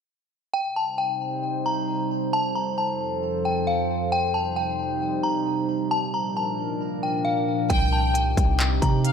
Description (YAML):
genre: hip hop, trap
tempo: 134 BPM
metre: 4/4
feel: half-time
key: C dorian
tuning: A4 = 440 Hz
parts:
  - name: delicate synth tine bell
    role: melody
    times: 0.5-9.1 s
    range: F5 to Bb5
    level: -26 LUFS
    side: left 1 dB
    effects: chorus, low-pass filter, ping-pong delay
  - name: warbly tape-like pad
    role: sustained chords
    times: 1.0-9.1 s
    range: F2 to C5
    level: -26 LUFS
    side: right 1 dB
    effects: chorus, built-in reverb
  - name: warm studio violin section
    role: second line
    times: 7.7-9.1 s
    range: F5 to G5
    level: -29 LUFS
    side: left 3 dB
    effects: ping-pong delay
  - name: warm 808-style bass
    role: bass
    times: 7.7-9.1 s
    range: C2 to C3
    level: -22 LUFS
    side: right 1 dB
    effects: none
  - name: trap drum kit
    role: drums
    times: 7.7-9.1 s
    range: handclaps, hi-hat, kick drum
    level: -24 LUFS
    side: equal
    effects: none
room: moderate plate reverb, RT60 1.4 s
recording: dreamy mix soaked in reverb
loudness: -22 LUFS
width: side -6 dB against mid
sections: 0.5-7.7 A section; 7.7-9.1 B section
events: none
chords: 0.5 Cm; 2.3 F; 4.1 Cm; 5.9 Bb; 7.7 Cm